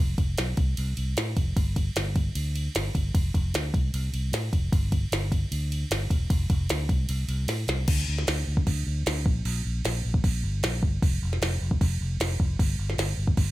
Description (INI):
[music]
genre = hard rock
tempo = 152 BPM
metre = 4/4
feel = straight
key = unclear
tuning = A4 = 440 Hz
[part]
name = fingered electric bass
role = bass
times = 0.0-13.5 s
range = E1 to A2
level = -27 LUFS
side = equal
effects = none
[part]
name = glitchy drum kit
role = drums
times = 0.2-13.5 s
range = crash cymbal, kick drum, ride cymbal, snare drum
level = -26 LUFS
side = equal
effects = none
[sound]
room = little or no reverb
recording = none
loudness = -24 LUFS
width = side -17 dB against mid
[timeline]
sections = 0.0-7.9 A section; 7.9-13.5 B section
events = drum fill 7.5-7.9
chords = none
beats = 0.38 0.78 1.17 | 1.57 1.96 2.36 2.75 | 3.15 3.54 3.94 4.33 | 4.73 5.12 5.52 5.91 | 6.31 6.70 7.09 7.49 | 7.88 8.27 8.67 9.06 | 9.45 9.85 10.24 10.63 | 11.02 11.41 11.81 12.20 | 12.59 12.98 13.37